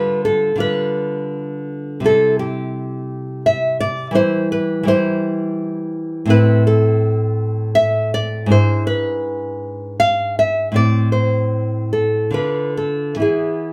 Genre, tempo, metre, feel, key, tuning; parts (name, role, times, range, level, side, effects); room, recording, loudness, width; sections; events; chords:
romantic piece for solo classical guitar; 68-88 BPM; 3/4; rubato; C major, A minor from 6.3 s; A4 = 435 Hz
nylon-string guitar; solo; 0.0-13.7 s; G#2 to F5; -18 LUFS; equal
wet small room reverb, RT60 0.5 s; heard from further back in the room; -18 LUFS; mono
0.0-13.7 A section
0.0 G7/D; 2.0 C; 4.2 C/E; 6.3 Am; 8.5 E7/G#; 10.8 Am; 12.4 Dm; 13.2 E